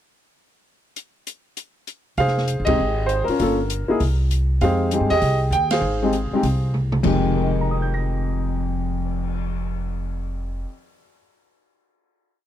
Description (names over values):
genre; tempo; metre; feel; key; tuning
jazz piano trio; 198 BPM; 4/4; swing 61% on 8ths; F minor; A4 = 440 Hz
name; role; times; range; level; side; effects
open jazz drum kit; drums; 1.0-9.4 s; crash cymbal, cymbal swell, hi-hat, kick drum, ride cymbal, snare drum, toms; -31 LUFS; equal; none
warm baby grand piano; melody; 2.2-11.2 s; F2 to Bb6; -21 LUFS; left 1 dB; none
upright bass; bass; 2.2-10.6 s; E1 to G2; -23 LUFS; equal; none
room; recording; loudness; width
small room reverb; dry, close 1970s-style studio recording; -19 LUFS; side -11 dB against mid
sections
1.0-2.2 pickup bar; 2.2-7.0 A section; 7.0-9.5 final chord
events
band accent 2.6, 5.7; drum fill 6.7-7.0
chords
1.0 N.C.; 2.2 Fm9; 3.4 Gm7b5; 4.0 N.C.; 4.6 Fm9